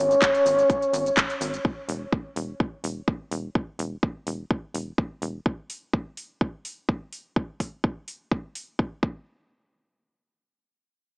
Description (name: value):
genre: progressive house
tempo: 126 BPM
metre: 4/4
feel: straight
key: unclear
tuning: A4 = 440 Hz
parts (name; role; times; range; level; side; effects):
- soft octave-layered synth lead; melody; 0.0-1.6 s; C#5; -21 LUFS; equal; chorus, tremolo, sidechain pumping, digital delay
- tight sequencer bass; bass; 0.0-5.4 s; E1 to G#1; -31 LUFS; equal; sidechain pumping
- house drum kit; drums; 0.1-8.7 s; handclaps, hi-hat, shaker; -28 LUFS; equal; none
- electronic kick drum; drums; 0.2-9.1 s; none; -24 LUFS; equal; none
room: light reverb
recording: small speaker sound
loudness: -24 LUFS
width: side -38 dB against mid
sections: 0.0-9.3 A section; 9.3-11.2 B section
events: none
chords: none